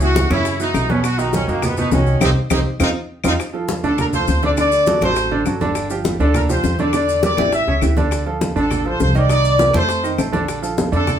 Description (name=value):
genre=latin, salsa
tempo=203 BPM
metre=4/4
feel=straight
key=unclear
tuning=A4 = 439 Hz
part: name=bright trumpet section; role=melody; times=0.0-11.2 s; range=Bb3 to E5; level=-19 LUFS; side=left 1 dB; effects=none
part: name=bright concert grand piano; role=accompaniment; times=0.0-11.2 s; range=Cb3 to Eb5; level=-21 LUFS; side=right 3 dB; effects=none
part: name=upright bass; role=bass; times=0.0-11.2 s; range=G1 to Gb2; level=-20 LUFS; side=equal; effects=none
part: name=bongos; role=percussion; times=0.0-11.2 s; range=none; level=-25 LUFS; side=left 6 dB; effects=none
part: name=congas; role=percussion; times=0.0-11.2 s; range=none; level=-24 LUFS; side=equal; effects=none
part: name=maracas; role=percussion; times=0.0-11.2 s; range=none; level=-34 LUFS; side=left 5 dB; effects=none
part: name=claves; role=percussion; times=0.3-11.2 s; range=none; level=-31 LUFS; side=left 5 dB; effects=none
room=wet studio reverb, RT60 0.6 s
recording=heard from further back in the room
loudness=-15 LUFS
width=side -9 dB against mid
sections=0.0-3.4 A section; 3.4-11.2 B section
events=band accent 2.2-3.4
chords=0.5 Gb5; 1.0 Badd9; 2.2 Cm7; 2.8 F5; 3.4 Dm7; 4.6 D7; 5.8 G5; 6.9 Em7b5; 7.5 A7; 8.1 Dm7; 9.3 Cm7; 9.9 Bbmaj7